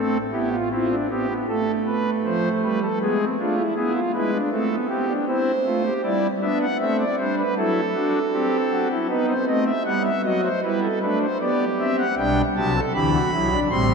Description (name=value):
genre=classical, baroque-style 4-part fugue for pipe organ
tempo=78 BPM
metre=4/4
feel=straight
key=unclear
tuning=A4 = 440 Hz
part: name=pipe organ, foundations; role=solo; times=0.0-13.9 s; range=A1 to C6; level=-20 LUFS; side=equal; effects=none
room=wet cathedral reverb, RT60 6.7 s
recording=minimal, uncompressed stereo recording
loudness=-20 LUFS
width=side -5 dB against mid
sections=0.0-12.2 A section; 12.2-13.9 B section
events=none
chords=0.0 Am; 1.5 Fadd9; 3.0 E/G#; 4.5 Am; 6.0 Em/G; 7.6 F#m7b5; 9.1 B; 10.6 Em/G; 12.2 G/B